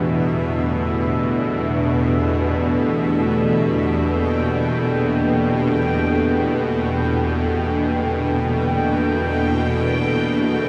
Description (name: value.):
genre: dark ambient drone.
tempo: free time.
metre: none.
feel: none.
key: unclear.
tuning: A4 = 440 Hz.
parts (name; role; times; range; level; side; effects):
dark analog pad; sustained chords; 0.0-10.7 s; E3 to A4; -23 LUFS; equal; chorus, phaser.
bowed-like drone; drone; 0.0-10.7 s; E2 to B2; -23 LUFS; equal; built-in reverb.
bubbling stepped-filter texture; texture; 0.0-10.7 s; E5 to G5; -31 LUFS; equal; chorus, built-in reverb.
room: wet cathedral reverb, RT60 5.0 s.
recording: in a vast, echoing space.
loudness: -20 LUFS.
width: mono.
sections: 0.0-10.7 A section.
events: none.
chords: 0.0 Em7; 3.9 Gmadd9.